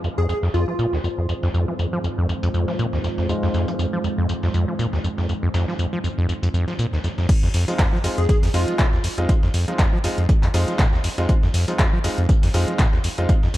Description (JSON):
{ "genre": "acid house", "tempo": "120 BPM", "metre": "4/4", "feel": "swing 56% on 16ths", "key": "F minor", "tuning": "A4 = 440 Hz", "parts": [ { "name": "dark analog pad", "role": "sustained chords", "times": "0.0-7.2 s", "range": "Ab3 to C5", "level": "-29 LUFS", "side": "right 1 dB", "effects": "chorus, vintage 12-bit sampler grit, sidechain pumping" }, { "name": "acid bass, saw", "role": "riff", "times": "0.0-13.6 s", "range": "Eb2 to F3", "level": "-22 LUFS", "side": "equal", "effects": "overdrive" }, { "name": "bright concert grand piano", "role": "stabs", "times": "0.0-13.3 s", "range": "Ab3 to F4", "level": "-29 LUFS", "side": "equal", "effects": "low-pass filter, analog delay" }, { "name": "dusty soul sampler-style drum kit", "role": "drums", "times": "0.0-13.6 s", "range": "hi-hat, snare drum, tambourine", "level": "-35 LUFS", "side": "left 1 dB", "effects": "overdrive, sidechain pumping on perc, high-pass filter on perc, low-pass filter on perc, high-pass filter on snare, low-pass filter on snare, sidechain pumping on hats, high-pass filter on hats, low-pass filter on hats, high-pass filter on room, low-pass filter on room" }, { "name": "plucky unison lead", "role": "melody", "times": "0.2-0.9, 8.2-8.9 s", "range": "F4 to Ab4", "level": "-27 LUFS", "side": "left 1 dB", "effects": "tape echo" }, { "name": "booming analog drum machine", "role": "drums", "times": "7.3-13.6 s", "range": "crash cymbal, handclaps, hi-hat", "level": "-28 LUFS", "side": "equal", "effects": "none" }, { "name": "electronic kick drum", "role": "drums", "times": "7.3-13.4 s", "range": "none", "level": "-18 LUFS", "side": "equal", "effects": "none" } ], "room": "light reverb, digital ambience", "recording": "dark, warm production", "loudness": "-18 LUFS", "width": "side -15 dB against mid", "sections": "0.0-7.3 A section; 7.3-13.6 B section", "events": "filter sweep on acid bass 0.0-7.3; filter sweep on analog synth pad 0.0-7.3; drop 7.3-13.6", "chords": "0.0 Fm7", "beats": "0.29 0.79 | 1.29 1.79 2.29 2.79 | 3.29 3.79 4.29 4.79 | 5.29 5.79 6.29 6.79 | 7.29 7.79 8.29 8.79 | 9.29 9.79 10.29 10.79 | 11.29 11.79 12.29 12.79 | 13.29" }